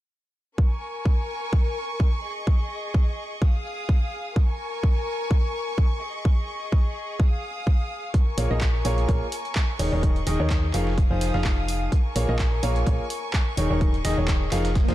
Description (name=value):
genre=piano house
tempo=127 BPM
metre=4/4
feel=swing 55% on 16ths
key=Bb minor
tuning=A4 = 440 Hz
part: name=rich chamber violin section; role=sustained chords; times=0.6-14.9 s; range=Ab4 to Eb6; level=-32 LUFS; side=left 1 dB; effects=sidechain pumping
part: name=electronic kick drum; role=drums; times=0.6-14.9 s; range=none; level=-21 LUFS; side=equal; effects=none
part: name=dusty soul sampler-style drum kit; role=drums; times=8.1-14.9 s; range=hi-hat, snare drum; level=-41 LUFS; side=right 2 dB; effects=none
part: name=clear upright piano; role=riff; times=8.4-14.9 s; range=Eb3 to F5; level=-27 LUFS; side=equal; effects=sidechain pumping, ping-pong delay
part: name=solid FM bass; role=bass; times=8.4-14.9 s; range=Eb1 to Eb2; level=-25 LUFS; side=equal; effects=sidechain pumping
part: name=punchy analog drum machine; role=drums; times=8.4-14.6 s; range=handclaps, hi-hat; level=-33 LUFS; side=equal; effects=none
part: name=swell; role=sound effects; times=14.8-14.9 s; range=none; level=-28 LUFS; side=right 4 dB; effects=none
room=little or no reverb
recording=dark, warm production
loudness=-22 LUFS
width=side -15 dB against mid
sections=0.6-14.9 A section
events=swell 14.8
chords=0.6 Bbm7; 2.2 Eb7sus4; 3.4 Fm7; 4.4 Bbm7; 6.0 Eb7sus4; 7.2 Fm7; 8.1 Bbm7; 9.8 Eb7sus4; 11.0 Fm7; 11.9 Bbm7; 13.6 Eb7sus4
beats=| 0.58 1.05 1.53 2.00 | 2.47 2.94 3.42 3.89 | 4.36 4.83 5.31 5.78 | 6.25 6.72 7.20 7.67 | 8.14 8.61 9.09 9.56 | 10.03 10.50 10.98 11.45 | 11.92 12.39 12.87 13.34 | 13.81 14.28 14.76